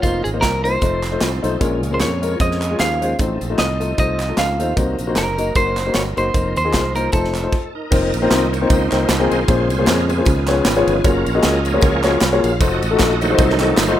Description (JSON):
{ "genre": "uptempo gospel", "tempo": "153 BPM", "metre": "4/4", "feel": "swing 56% on 8ths", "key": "unclear", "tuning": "A4 = 440 Hz", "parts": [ { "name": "clean electric guitar", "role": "melody", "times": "0.0-7.7 s", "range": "F4 to F5", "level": "-22 LUFS", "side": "right 1 dB", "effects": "none" }, { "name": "warm grand piano", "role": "accompaniment", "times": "0.0-14.0 s", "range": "A2 to Eb5", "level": "-20 LUFS", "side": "left 4 dB", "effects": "none" }, { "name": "bright tonewheel organ", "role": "sustained chords", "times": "0.0-14.0 s", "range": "Db3 to F5", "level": "-23 LUFS", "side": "right 2 dB", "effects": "fast rotary speaker, overdrive, chorus vibrato" }, { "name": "modern bright fingered electric bass", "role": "bass", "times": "0.0-14.0 s", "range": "F1 to F2", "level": "-22 LUFS", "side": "right 1 dB", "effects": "none" }, { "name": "modern studio drum kit", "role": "drums", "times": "0.0-13.9 s", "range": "crash cymbal, hi-hat, kick drum, ride cymbal, snare drum", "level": "-20 LUFS", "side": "equal", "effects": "none" }, { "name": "tambourine and handclaps", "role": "percussion", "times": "0.0-13.9 s", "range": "none", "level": "-29 LUFS", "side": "right 4 dB", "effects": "none" } ], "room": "light reverb, small room ambience", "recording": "rough home demo mix", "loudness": "-15 LUFS", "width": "side -11 dB against mid", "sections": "0.0-7.9 A section; 7.9-14.0 B section", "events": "stop 7.5-7.9; tonewheel organ solo 7.9-14.0", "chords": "0.0 F7sus4; 0.8 F7; 1.6 Bbm7; 3.2 F7/A; 4.8 Cm7b5; 6.3 F7sus4; 7.1 F7; 7.9 F7sus4; 9.5 Bbm9; 10.3 Db7; 11.0 Gbmaj9; 12.6 F7b9", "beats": "| 0.03 0.43 0.82 1.22 | 1.61 2.01 2.40 2.80 | 3.19 3.59 3.98 4.38 | 4.77 5.17 5.56 5.95 | 6.35 6.74 7.13 7.53 | 7.92 8.31 8.70 9.09 | 9.48 9.87 10.27 10.66 | 11.05 11.44 11.83 12.22 | 12.61 13.00 13.39 13.78" }